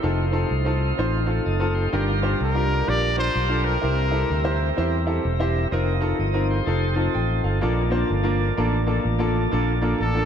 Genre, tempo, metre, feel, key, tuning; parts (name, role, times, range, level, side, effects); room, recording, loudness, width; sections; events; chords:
uptempo gospel; 126 BPM; 4/4; swing 62% on 8ths; Bb major; A4 = 442 Hz
clear upright piano; accompaniment; 0.0-10.3 s; G2 to G5; -25 LUFS; left 1 dB
tonewheel organ; sustained chords; 0.0-10.3 s; F3 to Eb5; -28 LUFS; right 2 dB; slow rotary speaker
fingered electric bass; bass; 0.0-10.3 s; E1 to E2; -23 LUFS; equal
clear trumpet; melody; 2.4-4.6, 10.0-10.3 s; A4 to D5; -29 LUFS; left 1 dB; ping-pong delay
moderate cathedral reverb, RT60 5.6 s; dreamy mix soaked in reverb; -20 LUFS; side -8 dB against mid
0.0-10.3 A section
0.0 F7; 1.9 Gm7; 3.8 C7; 5.7 F7sus4; 6.7 F7; 7.6 Bbmaj7